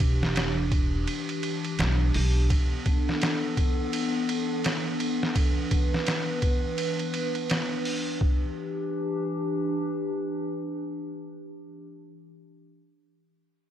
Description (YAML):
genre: trip hop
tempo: 84 BPM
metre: 4/4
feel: swing 60% on 16ths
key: E minor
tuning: A4 = 441 Hz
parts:
  - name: warbly tape-like pad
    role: sustained chords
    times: 0.0-11.8 s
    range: E3 to B4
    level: -29 LUFS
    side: equal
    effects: chorus, built-in reverb, vintage 12-bit sampler grit
  - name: upright bass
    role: bass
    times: 0.0-2.5 s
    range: E1 to B1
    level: -25 LUFS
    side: equal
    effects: none
  - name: trip hop sampler-style drum kit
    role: drums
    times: 0.0-8.4 s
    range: hi-hat, kick drum, ride cymbal, snare drum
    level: -27 LUFS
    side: equal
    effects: none
room: little or no reverb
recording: none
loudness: -25 LUFS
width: side -10 dB against mid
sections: 0.0-8.2 A section; 8.2-11.1 B section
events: none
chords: 0.0 Em7; 2.5 Bm7/E; 8.2 Em7